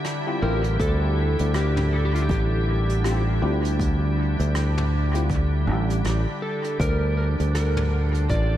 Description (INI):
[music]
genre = ambient dub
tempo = 80 BPM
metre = 4/4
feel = swing 59% on 16ths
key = D minor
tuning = A4 = 439 Hz
[part]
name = soft additive organ-like pad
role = sustained chords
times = 0.0-8.6 s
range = D3 to G4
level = -28 LUFS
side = equal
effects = ensemble chorus, built-in reverb
[part]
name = vintage brush drum kit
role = drums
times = 0.0-8.5 s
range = hi-hat, rim click, toms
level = -36 LUFS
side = equal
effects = dub echo
[part]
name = tine electric piano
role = stabs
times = 0.3-5.3 s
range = C4 to G4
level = -34 LUFS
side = left 3 dB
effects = none
[part]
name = electric slide guitar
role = melody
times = 0.4-8.6 s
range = F4 to D5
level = -31 LUFS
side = equal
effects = dub echo
[part]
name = fingered electric bass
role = bass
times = 0.4-8.6 s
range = A1 to D2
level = -22 LUFS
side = equal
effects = none
[part]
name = electronic kick drum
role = drums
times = 0.8-8.5 s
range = none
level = -26 LUFS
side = equal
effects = overdrive
[sound]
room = light reverb, studio reverb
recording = vinyl crackle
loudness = -20 LUFS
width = side -12 dB against mid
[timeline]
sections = 0.0-8.6 A section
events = none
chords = 0.0 Dsus4; 6.8 Bb